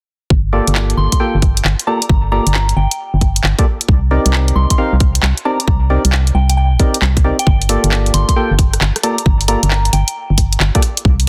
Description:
UK garage, two-step garage; 134 BPM; 4/4; swing 66% on 16ths; G minor; A4 = 440 Hz
organ-like FM bass; bass; 0.3-11.3 s; G1 to C2; -16 LUFS; equal; sidechain pumping
electronic kick drum; drums; 0.3-11.2 s; -16 LUFS; equal
percussive organ stab; stabs; 0.5-10.8 s; Bb3 to G5; -22 LUFS; equal; chorus, dub echo
garage drum kit; drums; 0.7-11.3 s; handclaps, hi-hat, rim click; -20 LUFS; equal
soft synth bell; melody; 1.0-10.4 s; G5 to C6; -25 LUFS; equal; chorus, phaser, dub echo
light reverb, digital ambience; dense, heavily limited modern master; -14 LUFS; mono
0.3-11.3 A section
0.3 Gm9; 3.9 Cm9; 7.5 Gm9

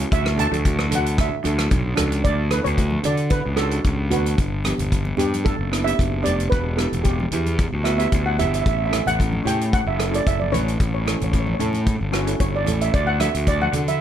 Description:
calypso; 112 BPM; 4/4; straight; D major; A4 = 440 Hz
steel pan; accompaniment; 0.0-14.0 s; B3 to B4; -27 LUFS; right 2 dB
fuzz fingered electric bass; bass; 0.0-14.0 s; E1 to D3; -23 LUFS; left 1 dB; overdrive
warm soul drum kit; drums; 0.0-14.0 s; hi-hat, kick drum, rim click; -24 LUFS; equal
steel pan; melody; 0.1-14.0 s; F#4 to A5; -25 LUFS; right 3 dB
congas; percussion; 0.4-14.0 s; -31 LUFS; right 2 dB
light reverb; -18 LUFS; side -10 dB against mid
0.0-2.3 A section; 2.3-14.0 B section
steel pan solo 2.3-14.0
0.1 Dadd9; 2.3 D; 4.4 Gmaj7; 6.5 Em7; 8.7 A; 10.8 A7; 12.9 D

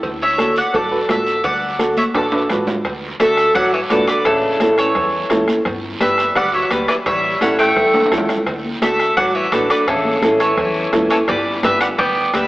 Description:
latin, cumbia; 171 BPM; 4/4; straight; D major; A4 = 440 Hz
upright bass; bass; 0.0-12.5 s; G1 to E2; -33 LUFS; equal
bombo; percussion; 0.0-12.5 s; -28 LUFS; left 1 dB
cowbell and timbales; percussion; 0.0-12.5 s; -26 LUFS; right 1 dB
guiro; percussion; 0.0-12.5 s; -31 LUFS; right 2 dB
mandolin; melody; 0.2-12.5 s; E4 to G5; -18 LUFS; equal; analog delay
clear upright piano; accompaniment; 0.4-12.5 s; C#4 to B4; -21 LUFS; right 1 dB
congas; percussion; 0.4-12.5 s; -28 LUFS; left 1 dB
warm tenor saxophone; second line; 3.2-12.5 s; C#3 to B3; -20 LUFS; equal
wet plate reverb, RT60 3.6 s; heard from further back in the room, AM radio sound; -14 LUFS; side -18 dB against mid
0.0-2.8 A section; 2.8-12.5 B section
drum fill 1.8-2.8, 7.9-8.5
0.0 D; 4.3 A; 5.7 G; 7.1 A7; 8.5 D; 9.9 A; 11.3 G

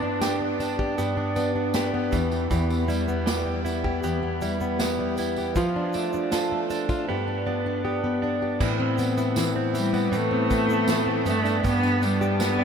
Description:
acoustic pop; 79 BPM; 4/4; straight; A minor; A4 = 440 Hz
clear cello; melody; 0.0-0.2, 9.8-12.6 s; G3 to D4; -26 LUFS; right 2 dB; analog delay
fingerpicked plugged-in steel-string acoustic guitar; accompaniment; 0.0-12.6 s; E2 to G4; -25 LUFS; left 2 dB
direct-recorded clean electric guitar; arpeggios; 0.0-12.6 s; E3 to A4; -30 LUFS; right 8 dB; wide subtle chorus, analog delay
unplugged drum kit; drums; 0.2-12.6 s; crash cymbal, kick drum, shaker, snare drum; -32 LUFS; right 1 dB
tambourine; percussion; 0.2-12.6 s; -40 LUFS; right 4 dB
moderate huge ambient reverb, RT60 8.1 s; dreamy mix soaked in reverb; -22 LUFS; side -7 dB against mid
0.0-8.6 A section; 8.6-12.6 B section
0.0 G; 2.1 Em; 5.6 Dm/F; 7.1 G; 8.6 Amadd9; 11.3 G

